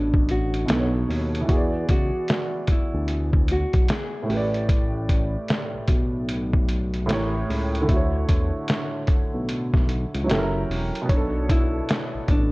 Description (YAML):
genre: lo-fi hip hop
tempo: 75 BPM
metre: 4/4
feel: swing 62% on 16ths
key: D major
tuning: A4 = 440 Hz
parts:
  - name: nylon-string guitar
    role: melody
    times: 0.0-4.3, 11.5-12.5 s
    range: D4 to G#4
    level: -28 LUFS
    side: equal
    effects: low-pass filter, analog delay
  - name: warm upright piano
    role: accompaniment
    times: 0.0-12.5 s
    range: A2 to C#6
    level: -27 LUFS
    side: right 1 dB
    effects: low-pass filter
  - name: smooth synth bass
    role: bass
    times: 0.0-12.5 s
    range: E1 to E2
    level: -26 LUFS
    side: equal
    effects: none
  - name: lo-fi sampler-style drum kit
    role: drums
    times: 0.1-12.5 s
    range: hi-hat, kick drum, snare drum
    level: -23 LUFS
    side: equal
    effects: vintage 12-bit sampler grit
room: little or no reverb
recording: cassette tape, nothing above 10.5 kHz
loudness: -20 LUFS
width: side -23 dB against mid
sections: 0.0-12.5 A section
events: none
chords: 0.0 Bm9; 0.7 B9; 1.5 E9; 4.3 A9sus4; 7.1 A7b9; 7.9 Dmaj9; 10.3 F#7b9; 11.1 Bm9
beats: 0.69 | 1.49 2.29 3.09 3.89 | 4.69 5.49 6.29 7.09 | 7.89 8.69 9.49 10.29 | 11.09 11.89